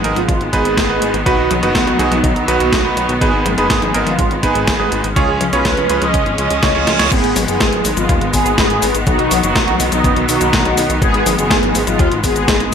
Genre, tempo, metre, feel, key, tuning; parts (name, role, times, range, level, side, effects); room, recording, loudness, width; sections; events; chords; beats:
italo disco; 123 BPM; 4/4; straight; G# dorian; A4 = 440 Hz
mellow synth brass; melody; 0.0-12.7 s; G#3 to D#5; -18 LUFS; right 1 dB; chorus, phaser, vintage 12-bit sampler grit, digital delay
rich studio string section; sustained chords; 0.0-12.7 s; D#3 to C#4; -20 LUFS; left 1 dB
bright electric grand piano; stabs; 0.0-7.1 s; B3 to C#5; -19 LUFS; right 3 dB; ping-pong delay
chorused synth bass; bass; 0.0-12.7 s; F#1 to D#2; -21 LUFS; equal
clean 12-bit digital drum machine; drums; 0.0-12.7 s; cabasa, crash cymbal, hi-hat, snare drum, toms; -19 LUFS; left 2 dB; overdrive, studio reverb, gated reverb
electronic kick drum; drums; 0.3-12.6 s; -19 LUFS; equal; studio reverb
reverse cymbal; sound effects; 6.4-7.1 s; -23 LUFS; right 6 dB
light reverb; -12 LUFS; side -7 dB against mid
0.0-7.1 A section; 7.1-12.7 B section
reverse cymbal 6.4-7.1; drum fill 6.9
0.0 G#m; 1.3 B; 3.2 G#m; 5.2 C#; 7.1 G#m; 9.1 B; 11.0 G#m
0.29 0.77 | 1.26 1.75 2.24 2.73 | 3.21 3.70 4.19 4.68 | 5.16 5.65 6.14 6.63 | 7.12 7.60 8.09 8.58 | 9.07 9.55 10.04 10.53 | 11.02 11.51 11.99 12.48